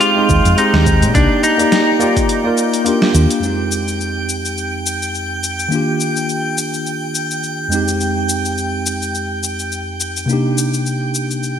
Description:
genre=sunset chillout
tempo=105 BPM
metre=4/4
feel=swing 56% on 16ths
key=F dorian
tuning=A4 = 440 Hz
part: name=semi-hollow electric guitar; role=melody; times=0.0-3.1 s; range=D4 to F4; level=-16 LUFS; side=equal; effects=spring reverb, ping-pong delay
part: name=tine electric piano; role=accompaniment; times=0.0-11.6 s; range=F2 to D5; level=-18 LUFS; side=equal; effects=auto-pan, ping-pong delay, slapback echo
part: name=dusty soul sampler-style drum kit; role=drums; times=0.0-11.6 s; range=hi-hat, shaker, snare drum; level=-22 LUFS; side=left 2 dB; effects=overdrive
part: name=drifting glass-harmonics texture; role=texture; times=0.0-11.6 s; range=G5 to G6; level=-24 LUFS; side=equal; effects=chorus, built-in reverb
part: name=hollow-body short-scale fingered electric bass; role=bass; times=0.3-3.3 s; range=C2 to Bb2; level=-13 LUFS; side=equal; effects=none
part: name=electronic kick drum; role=drums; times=0.3-2.3 s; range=none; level=-18 LUFS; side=equal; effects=overdrive
room=wet lush hall reverb, RT60 2.3 s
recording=big arena sound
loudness=-14 LUFS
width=side -8 dB against mid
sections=0.0-3.4 A section; 3.4-11.6 B section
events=kick drops out 2.3-3.4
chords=0.0 Fm9; 1.1 Cm9 (rootless); 2.3 Ebmaj9; 3.4 Fm9; 5.7 Ebmaj9; 7.7 Fm9; 10.3 Cm9

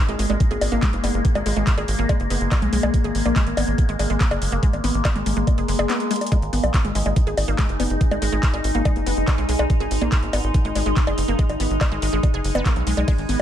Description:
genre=psychedelic trance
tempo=142 BPM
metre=4/4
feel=straight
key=G# minor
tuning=A4 = 440 Hz
part: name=overtone-sweeping drone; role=sustained chords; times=0.0-13.4 s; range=G#3 to D#4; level=-26 LUFS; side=left 1 dB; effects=chorus, built-in reverb, sidechain pumping
part: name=wide unison pluck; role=riff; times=0.1-13.3 s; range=G#3 to G#4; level=-27 LUFS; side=equal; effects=auto-pan, cassette tape, sidechain pumping, tape echo
part: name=tight sequencer bass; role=bass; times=0.1-13.4 s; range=F#1 to B1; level=-24 LUFS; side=equal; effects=none
part: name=techno drum kit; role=drums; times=0.1-13.4 s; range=bongos, handclaps, hi-hat, ride cymbal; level=-27 LUFS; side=left 2 dB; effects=none
part: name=electronic kick drum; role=drums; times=0.4-13.2 s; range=none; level=-19 LUFS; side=equal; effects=none
part: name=swell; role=sound effects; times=5.6-6.3 s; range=none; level=-31 LUFS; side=left 5 dB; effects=none
room=little or no reverb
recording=none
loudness=-18 LUFS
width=side -10 dB against mid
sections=0.0-13.4 A section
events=swell 5.6-6.3; break 5.9-6.3; drum fill 6.1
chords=0.0 G#5

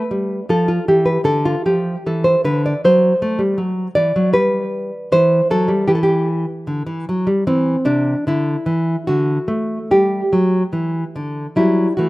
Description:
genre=classical, baroque-style dance for nylon-string guitar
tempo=71-79 BPM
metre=3/4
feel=rubato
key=unclear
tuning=A4 = 440 Hz
part: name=nylon-string guitar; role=solo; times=0.0-12.1 s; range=C3 to D5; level=-15 LUFS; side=equal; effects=none
room=light reverb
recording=recorded outdoors, with no room sound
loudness=-15 LUFS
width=side -19 dB against mid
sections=0.0-12.1 A section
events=none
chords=0.0 G; 0.5 Dm; 2.8 D9; 4.4 N.C.; 5.1 D9 (rootless); 7.5 Cadd9; 8.3 Dsus2; 9.1 D; 9.9 G5

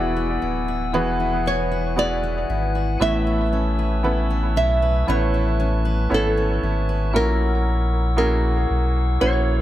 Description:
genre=pop ballad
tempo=58 BPM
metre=4/4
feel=straight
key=A major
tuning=A4 = 440 Hz
part: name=clear grand piano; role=accompaniment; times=0.0-9.6 s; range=A2 to D5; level=-25 LUFS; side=right 2 dB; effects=analog delay
part: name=pipe organ, stopped flute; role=sustained chords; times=0.0-9.6 s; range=A#4 to F#6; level=-30 LUFS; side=left 2 dB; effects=none
part: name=fingerpicked steel-string acoustic guitar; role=arpeggios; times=0.0-7.8 s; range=E3 to B4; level=-29 LUFS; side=left 4 dB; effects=analog delay
part: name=saturated sub bass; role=bass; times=0.0-9.6 s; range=D1 to B1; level=-22 LUFS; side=equal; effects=none
part: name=nylon-string guitar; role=melody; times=1.5-9.6 s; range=A4 to E5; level=-25 LUFS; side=right 2 dB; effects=analog delay
room=moderate spring reverb, RT60 1.7 s, studio ambience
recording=echo-heavy mix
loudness=-18 LUFS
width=side -13 dB against mid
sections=0.0-9.6 A section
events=none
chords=0.0 Eadd9; 3.0 Aadd9; 7.1 F#7/A#

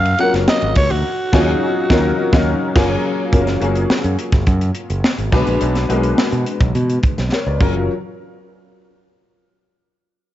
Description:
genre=polished 1980s jazz-funk pop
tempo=105 BPM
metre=4/4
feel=straight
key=F# major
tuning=A4 = 444 Hz
part: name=growling alto saxophone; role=melody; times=0.0-3.0 s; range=F#4 to F#5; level=-20 LUFS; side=right 1 dB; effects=cassette tape
part: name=warm baby grand piano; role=accompaniment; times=0.0-7.9 s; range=F#3 to D5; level=-19 LUFS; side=left 2 dB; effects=ensemble chorus, cassette tape
part: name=modern bright fingered electric bass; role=bass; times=0.0-7.9 s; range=F#1 to B2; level=-19 LUFS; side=equal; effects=none
part: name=crisp fusion drum kit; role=drums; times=0.1-7.7 s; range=crash cymbal, hi-hat, kick drum, ride cymbal, snare drum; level=-18 LUFS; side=equal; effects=cassette tape
room=studio ambience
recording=home recording on cassette, nothing above 7.8 kHz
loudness=-14 LUFS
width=side -13 dB against mid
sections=0.0-3.3 A section; 3.3-7.9 B section; 7.9-10.2 C section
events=band accent 1.0-3.3; drum fill 7.3-7.9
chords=0.0 F#maj7; 1.0 D#m11; 2.8 F#maj9; 5.3 Bm6; 7.6 F#maj7; 7.9 N.C.

